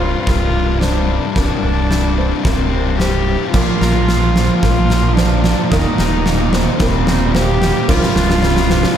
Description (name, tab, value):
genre	post-rock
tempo	110 BPM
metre	4/4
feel	straight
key	C minor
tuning	A4 = 439 Hz
part	warm cello	melody	0.0-9.0 s	C4 to G4	-20 LUFS	right 1 dB	diffuse ambient delay
part	pedal steel guitar	sustained chords	0.0-9.0 s	Bb4 to Eb6	-32 LUFS	right 1 dB	none
part	felt-muted upright piano	arpeggios	0.0-9.0 s	Bb4 to C5	-28 LUFS	right 3 dB	analog chorus, diffuse ambient delay
part	twangy electric guitar	arpeggios	0.0-9.0 s	C2 to Bb4	-27 LUFS	left 2 dB	lush chorus, diffuse ambient delay
part	thick fuzz guitar	riff	0.0-9.0 s	C2 to F3	-20 LUFS	left 9 dB	distortion
part	fingered electric bass	bass	0.0-8.8 s	C1 to Bb1	-18 LUFS	equal	none
part	huge arena drum kit	drums	0.3-9.0 s	crash cymbal, kick drum, snare drum	-19 LUFS	equal	none
part	overdriven semi-hollow guitar	riff	3.5-9.0 s	C2 to F3	-19 LUFS	right 11 dB	none
room	light reverb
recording	none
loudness	-12 LUFS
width	side -9 dB against mid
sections	0.0-9.0 A section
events	build-up 0.0-9.0; drum fill 0.0-9.0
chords	0.0 Csus2; 3.5 Bb; 5.7 Eb; 7.9 Csus2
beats	0.28 0.82 | 1.36 1.91 2.45 3.00 | 3.54 4.09 4.63 5.17 | 5.72 6.26 6.81 7.35 | 7.90 8.44